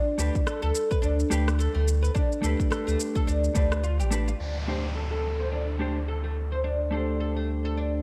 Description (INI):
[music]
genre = organic downtempo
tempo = 107 BPM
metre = 4/4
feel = swing 57% on 16ths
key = unclear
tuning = A4 = 440 Hz
[part]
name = oud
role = arpeggios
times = 0.0-7.9 s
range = A3 to D5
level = -33 LUFS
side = equal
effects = low-pass filter, delay
[part]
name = mellow electric guitar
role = accompaniment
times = 0.2-8.0 s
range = A3 to C5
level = -35 LUFS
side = equal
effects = sidechain pumping, delay
[part]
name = warm sub bass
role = bass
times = 0.2-8.0 s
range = A1 to D2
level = -29 LUFS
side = equal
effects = sidechain pumping
[part]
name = electronic shaker and rim click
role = drums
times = 0.2-4.4 s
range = none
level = -37 LUFS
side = equal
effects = none
[part]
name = electronic kick drum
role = drums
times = 0.4-3.7 s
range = none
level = -28 LUFS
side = equal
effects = none
[part]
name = downlifter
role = sound effects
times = 4.4-8.0 s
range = none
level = -42 LUFS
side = equal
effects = none
[sound]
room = light reverb, digital ambience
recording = none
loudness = -27 LUFS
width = mono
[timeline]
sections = 0.0-4.4 A section; 4.4-8.0 B section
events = filter sweep on oud 4.4-8.0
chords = 0.0 G/D; 4.4 D7(no3)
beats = 0.47 1.03 1.59 | 2.15 2.71 3.28 3.84 | 4.40 4.96 5.52 6.08 | 6.64 7.20 7.76